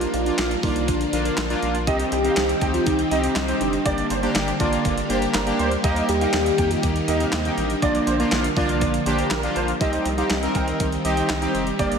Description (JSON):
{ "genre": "synth-pop", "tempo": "121 BPM", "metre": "4/4", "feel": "straight", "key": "C minor", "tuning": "A4 = 444 Hz", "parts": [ { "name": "warm velvety synth lead", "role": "melody", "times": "0.0-9.3 s", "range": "C4 to G4", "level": "-27 LUFS", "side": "equal", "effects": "chorus, tremolo, analog delay" }, { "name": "analog synth brass", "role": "accompaniment", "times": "0.0-12.0 s", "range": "Bb3 to Bb4", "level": "-24 LUFS", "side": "equal", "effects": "chorus" }, { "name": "string machine, violins", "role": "sustained chords", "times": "0.0-12.0 s", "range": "D3 to D4", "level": "-28 LUFS", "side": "equal", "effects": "ensemble chorus" }, { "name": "rubbery square bass", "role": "bass", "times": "0.0-12.0 s", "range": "F1 to F2", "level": "-28 LUFS", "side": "equal", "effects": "none" }, { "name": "clean 12-bit digital drum machine", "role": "drums", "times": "0.0-12.0 s", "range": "handclaps, hi-hat, kick drum, snare drum", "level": "-27 LUFS", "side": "equal", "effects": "overdrive" }, { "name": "warm grand piano", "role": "second line", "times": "1.9-12.0 s", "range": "Bb4 to G5", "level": "-28 LUFS", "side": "right 4 dB", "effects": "ensemble chorus, analog delay" } ], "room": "wet cathedral reverb, RT60 5.1 s", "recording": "dreamy mix soaked in reverb", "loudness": "-19 LUFS", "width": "side -6 dB against mid", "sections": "0.0-9.8 A section; 9.8-12.0 B section", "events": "none", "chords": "0.0 Bb; 1.9 Cm; 3.9 Gm; 5.8 Eb; 7.8 Bb; 9.8 Cm", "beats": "0.39 0.88 1.38 | 1.87 2.37 2.86 3.36 | 3.86 4.35 4.85 5.34 | 5.84 6.33 6.83 7.33 | 7.82 8.32 8.81 9.31 | 9.81 10.30 10.80 11.29 | 11.79" }